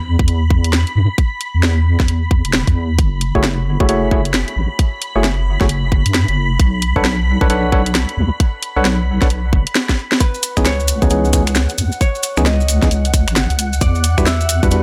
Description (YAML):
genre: UK garage, two-step garage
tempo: 133 BPM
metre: 4/4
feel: swing 62% on 16ths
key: C# phrygian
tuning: A4 = 441 Hz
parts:
  - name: soft string machine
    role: sustained chords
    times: 0.0-14.8 s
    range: F#5 to B5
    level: -30 LUFS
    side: equal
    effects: ensemble chorus, sidechain pumping
  - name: deep soft wobble bass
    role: bass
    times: 0.0-14.8 s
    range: E1 to G2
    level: -19 LUFS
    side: equal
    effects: chorus
  - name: electronic kick drum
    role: drums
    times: 0.2-14.7 s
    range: none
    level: -17 LUFS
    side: equal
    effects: overdrive
  - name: garage drum kit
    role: drums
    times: 0.3-14.8 s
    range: finger snaps, hi-hat, snare drum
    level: -21 LUFS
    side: equal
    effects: overdrive
  - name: percussive organ stab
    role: stabs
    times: 3.4-14.8 s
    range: E3 to F#5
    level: -23 LUFS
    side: equal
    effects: chorus, dub echo
  - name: Celtic harp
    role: melody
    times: 10.2-14.8 s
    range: B4 to E5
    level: -27 LUFS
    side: equal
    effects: dub echo
  - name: maracas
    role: percussion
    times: 10.2-14.8 s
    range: none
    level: -27 LUFS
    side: equal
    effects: none
room: digital ambience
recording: none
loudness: -16 LUFS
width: mono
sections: 0.0-14.8 A section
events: drum fill 9.9-10.2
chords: 0.0 E5; 3.0 F#m9; 6.6 Bm9; 10.2 C#m9; 13.8 Em9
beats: 0.28 0.73 | 1.18 1.63 2.08 2.54 | 2.99 3.44 3.89 4.34 | 4.79 5.24 5.69 6.14 | 6.59 7.05 7.50 7.95 | 8.40 8.85 9.30 9.75 | 10.20 10.65 11.11 11.56 | 12.01 12.46 12.91 13.36 | 13.81 14.26 14.71